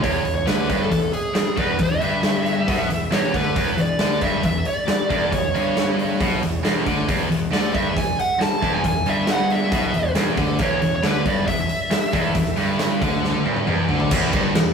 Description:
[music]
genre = hard rock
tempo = 136 BPM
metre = 4/4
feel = straight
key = unclear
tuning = A4 = 439 Hz
[part]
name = dark smooth lead guitar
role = melody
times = 0.0-13.6 s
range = G#4 to A5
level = -24 LUFS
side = right 1 dB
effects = overdrive, tape echo
[part]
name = high-gain distorted guitar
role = riff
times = 0.0-14.7 s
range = E2 to D3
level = -25 LUFS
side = right 4 dB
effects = distortion
[part]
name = scooped high-gain guitar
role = riff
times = 0.0-14.7 s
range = E2 to D3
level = -26 LUFS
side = left 5 dB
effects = distortion
[part]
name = fuzz picked electric bass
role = bass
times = 0.0-14.7 s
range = E1 to D2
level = -28 LUFS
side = left 1 dB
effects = overdrive
[part]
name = huge arena drum kit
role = drums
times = 0.0-14.7 s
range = crash cymbal, hi-hat, kick drum, snare drum, toms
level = -23 LUFS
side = equal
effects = none
[sound]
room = moderate stone room reverb, RT60 1.1 s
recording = rough rehearsal-room recording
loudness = -18 LUFS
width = side -6 dB against mid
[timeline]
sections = 0.0-14.1 A section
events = drum fill 13.2-14.1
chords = 0.0 E5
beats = | 0.03 0.47 0.91 1.35 | 1.79 2.23 2.67 3.11 | 3.55 3.99 4.43 4.87 | 5.31 5.75 6.19 6.63 | 7.07 7.51 7.95 8.39 | 8.83 9.27 9.71 10.15 | 10.59 11.03 11.47 11.91 | 12.35 12.79 13.23 13.67 | 14.11 14.55

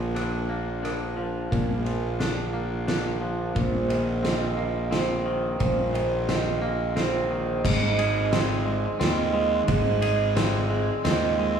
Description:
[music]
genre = post-rock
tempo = 88 BPM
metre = 3/4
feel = straight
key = unclear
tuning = A4 = 440 Hz
[part]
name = twangy electric guitar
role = arpeggios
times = 0.0-11.6 s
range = Ab2 to Ab4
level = -29 LUFS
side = left 1 dB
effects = none
[part]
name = vibraphone with medium hard mallets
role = arpeggios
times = 0.0-11.6 s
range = Bb4 to Eb5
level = -30 LUFS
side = right 5 dB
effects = none
[part]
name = fuzz fingered electric bass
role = bass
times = 0.0-11.6 s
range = Ab1 to Eb2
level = -28 LUFS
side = equal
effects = overdrive
[part]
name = oversized low-tuned drum kit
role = drums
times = 0.2-11.2 s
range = crash cymbal, kick drum, ride cymbal, rim click, snare drum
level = -28 LUFS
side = equal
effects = none
[sound]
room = wet scoring stage reverb, RT60 1.8 s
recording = recorded in a church or concert hall, small room ambience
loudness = -23 LUFS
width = side -7 dB against mid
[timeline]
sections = 0.0-7.7 A section; 7.7-11.6 B section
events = none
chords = 0.0 Bb; 3.6 Eb5/Bb; 7.7 Ab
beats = 0.16 0.84 | 1.52 2.20 2.89 | 3.57 4.25 4.93 | 5.61 6.29 6.97 | 7.65 8.33 9.01 | 9.69 10.37 11.04

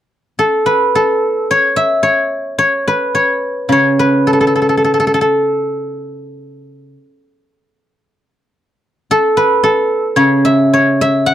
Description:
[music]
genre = chinese traditional, Chinese solo plucked strings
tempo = 56 BPM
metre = 4/4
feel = rubato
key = A gong mode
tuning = A4 = 438 Hz
[part]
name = guzheng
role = solo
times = 0.4-11.3 s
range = C#3 to F#5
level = -11 LUFS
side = equal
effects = none
[sound]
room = little or no reverb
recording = dry, close 1970s-style studio recording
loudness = -11 LUFS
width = side -11 dB against mid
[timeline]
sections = 0.0-11.3 A section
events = none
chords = none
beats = 0.38 1.49 2.59 | 3.69 4.79 5.88 6.95 | 8.02 9.09 10.16 11.23

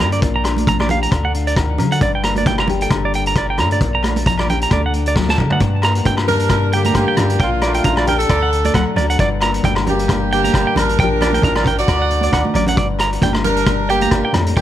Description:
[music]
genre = highlife guitar band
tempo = 134 BPM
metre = 4/4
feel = swing 55% on 16ths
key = G minor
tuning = A4 = 440 Hz
[part]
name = nylon-string guitar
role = accompaniment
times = 0.0-14.6 s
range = G2 to A4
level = -23 LUFS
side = left 8 dB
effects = none
[part]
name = clean electric guitar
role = arpeggios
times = 0.0-14.6 s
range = D5 to Bb5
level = -21 LUFS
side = right 4 dB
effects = analog delay
[part]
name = punchy sub bass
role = bass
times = 0.0-14.6 s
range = G1 to D3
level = -20 LUFS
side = equal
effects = none
[part]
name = vintage drum kit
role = drums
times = 0.0-14.6 s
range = hi-hat, kick drum, rim click, snare drum, toms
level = -20 LUFS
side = equal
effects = none
[part]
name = agogo bells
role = percussion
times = 0.0-14.5 s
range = none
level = -28 LUFS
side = left 6 dB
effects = none
[part]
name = congas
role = percussion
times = 0.0-14.5 s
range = none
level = -24 LUFS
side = right 5 dB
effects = none
[part]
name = clear horn section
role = melody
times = 6.3-14.6 s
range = A3 to D5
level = -19 LUFS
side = right 1 dB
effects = none
[sound]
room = light reverb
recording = none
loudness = -14 LUFS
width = side -12 dB against mid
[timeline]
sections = 0.0-5.6 A section; 5.6-14.6 B section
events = drum fill 5.2-5.6, 12.3-12.8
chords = 0.2 Bb6; 1.1 D; 2.0 Gm; 3.8 Bb6; 4.7 D; 5.6 Gm; 7.4 Bb6; 8.3 D; 9.2 Gm; 11.0 Bb6; 11.9 D; 12.8 Gm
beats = | 0.22 0.67 1.12 1.57 | 2.02 2.47 2.92 3.36 | 3.81 4.26 4.71 5.16 | 5.61 6.06 6.50 6.95 | 7.40 7.85 8.30 8.75 | 9.19 9.64 10.09 10.54 | 10.99 11.44 11.88 12.33 | 12.78 13.23 13.68 14.12 | 14.57

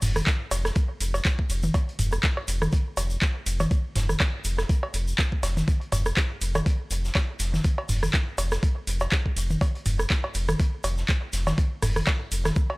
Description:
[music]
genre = minimal techno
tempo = 122 BPM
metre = 4/4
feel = swing 56% on 16ths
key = unclear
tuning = A4 = 439 Hz
[part]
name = round analog bass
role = bass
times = 0.0-12.5 s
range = F1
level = -27 LUFS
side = equal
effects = tube saturation, sidechain pumping
[part]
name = garage drum kit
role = drums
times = 0.0-12.4 s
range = handclaps, hi-hat, ride cymbal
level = -30 LUFS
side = equal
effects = overdrive, studio reverb
[part]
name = vintage drum kit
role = drums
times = 0.0-12.6 s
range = hi-hat, snare drum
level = -40 LUFS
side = equal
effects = sidechain pumping on hats, high-pass filter on hats, studio reverb, high-pass filter on snare, high-pass filter on room
[part]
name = booming analog drum machine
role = percussion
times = 0.0-12.8 s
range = cowbell, rim click, toms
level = -29 LUFS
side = equal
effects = studio reverb, analog delay
[part]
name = tube shaker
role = percussion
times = 0.0-12.7 s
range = none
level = -38 LUFS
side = left 2 dB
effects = none
[part]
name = electronic kick drum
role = drums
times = 0.3-12.7 s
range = none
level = -23 LUFS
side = equal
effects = overdrive, studio reverb
[sound]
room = small room ambience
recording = dry, gritty hardware recording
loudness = -23 LUFS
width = side -24 dB against mid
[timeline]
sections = 0.0-12.8 A section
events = none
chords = none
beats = 0.27 0.76 1.25 | 1.74 2.23 2.73 3.22 | 3.71 4.20 4.69 5.19 | 5.68 6.17 6.66 7.15 | 7.64 8.14 8.63 9.12 | 9.61 10.10 10.60 11.09 | 11.58 12.07 12.56

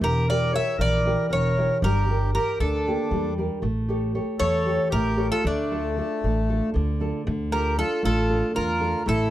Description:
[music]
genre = greek folk, Greek bouzouki band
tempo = 232 BPM (eighths)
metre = 7/8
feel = straight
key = D harmonic minor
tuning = A4 = 440 Hz
[part]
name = Greek bouzouki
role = melody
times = 0.0-9.3 s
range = D4 to E5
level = -26 LUFS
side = right 1 dB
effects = none
[part]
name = accordion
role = second line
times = 0.0-9.3 s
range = A3 to C#5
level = -30 LUFS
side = left 2 dB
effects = none
[part]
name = nylon-string guitar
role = accompaniment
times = 0.0-9.3 s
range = D3 to C#5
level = -27 LUFS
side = right 1 dB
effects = none
[part]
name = upright bass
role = bass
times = 0.0-9.3 s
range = E1 to E2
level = -26 LUFS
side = equal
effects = none
[sound]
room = small room reverb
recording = dry, close 1970s-style studio recording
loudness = -21 LUFS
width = side -13 dB against mid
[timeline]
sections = 0.0-7.3 A section; 7.3-9.3 B section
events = none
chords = 0.0 Edim; 1.8 Gm; 3.6 A7; 5.4 Dm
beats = | 0.01 0.27 0.53 0.79 1.05 1.30 1.56 | 1.82 2.08 2.34 2.60 2.86 3.12 3.38 | 3.63 3.89 4.15 4.41 4.67 4.93 5.19 | 5.45 5.70 5.96 6.22 6.48 6.74 7.00 | 7.26 7.51 7.77 8.03 8.29 8.55 8.81 | 9.07

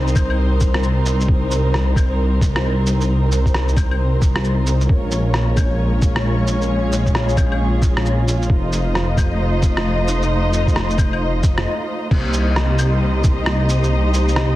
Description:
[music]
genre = future garage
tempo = 133 BPM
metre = 4/4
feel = swing 63% on 16ths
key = C phrygian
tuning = A4 = 439 Hz
[part]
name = dark symphonic string section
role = sustained chords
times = 0.0-14.6 s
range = G3 to Eb5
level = -22 LUFS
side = equal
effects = sidechain pumping
[part]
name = dark detuned saw bass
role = bass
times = 0.0-14.6 s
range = F1 to C2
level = -18 LUFS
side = equal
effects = sidechain pumping
[part]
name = lo-fi sampler-style drum kit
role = drums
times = 0.1-14.5 s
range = cabasa, claves, crash cymbal, rim click, shaker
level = -25 LUFS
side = equal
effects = vintage 12-bit sampler grit, soft clipping on snare
[part]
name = electronic kick drum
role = drums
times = 0.2-13.4 s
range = none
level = -18 LUFS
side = equal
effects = vintage 12-bit sampler grit
[sound]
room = little or no reverb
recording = dense, heavily limited modern master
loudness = -15 LUFS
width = side -16 dB against mid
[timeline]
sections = 0.0-12.1 A section; 12.1-14.6 B section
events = break 11.7-12.1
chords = 0.0 Cm7; 4.9 Bbm7; 8.5 F7; 12.1 Cm7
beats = 0.39 0.84 | 1.29 1.74 2.19 2.64 | 3.09 3.54 3.99 4.45 | 4.90 5.35 5.80 6.25 | 6.70 7.15 7.60 8.05 | 8.51 8.96 9.41 9.86 | 10.31 10.76 11.21 11.66 | 12.11 12.56 13.02 13.47 | 13.92 14.37

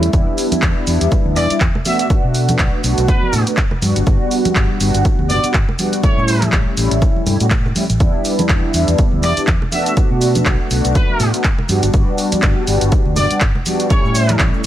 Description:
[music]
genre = filtered disco house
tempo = 122 BPM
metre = 4/4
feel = swing 57% on 16ths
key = E dorian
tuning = A4 = 444 Hz
[part]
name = mellow synth brass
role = accompaniment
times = 0.0-14.7 s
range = G3 to F#4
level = -19 LUFS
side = equal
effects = chorus, phaser, sidechain pumping, low-pass filter
[part]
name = fingered electric bass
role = bass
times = 0.0-14.7 s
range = G1 to B2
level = -18 LUFS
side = equal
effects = sidechain pumping, low-pass filter
[part]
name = punchy analog drum machine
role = drums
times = 0.0-14.7 s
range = handclaps, hi-hat, shaker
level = -22 LUFS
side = equal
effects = sidechain pumping on hats, sidechain pumping on perc
[part]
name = tube shaker and congas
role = percussion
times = 0.0-14.7 s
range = none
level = -25 LUFS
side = right 2 dB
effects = sidechain pumping on perc, low-pass filter on perc
[part]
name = electronic kick drum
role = drums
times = 0.1-14.5 s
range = none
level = -16 LUFS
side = equal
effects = none
[part]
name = bright trumpet section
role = melody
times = 1.4-14.4 s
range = B4 to E5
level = -22 LUFS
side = equal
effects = sidechain pumping, low-pass filter
[sound]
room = digital ambience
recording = none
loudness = -13 LUFS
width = side -12 dB against mid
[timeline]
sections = 0.0-14.7 A section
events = none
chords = 0.1 Em7; 1.9 Bm7; 3.8 Gmaj7; 6.0 A7; 8.0 Em7; 9.7 Bm7; 11.7 Gmaj7; 13.9 A7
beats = | 0.13 0.63 1.12 1.61 | 2.10 2.59 3.08 3.58 | 4.07 4.56 5.05 5.54 | 6.04 6.53 7.02 7.51 | 8.00 8.49 8.99 9.48 | 9.97 10.46 10.95 11.45 | 11.94 12.43 12.92 13.41 | 13.90 14.40

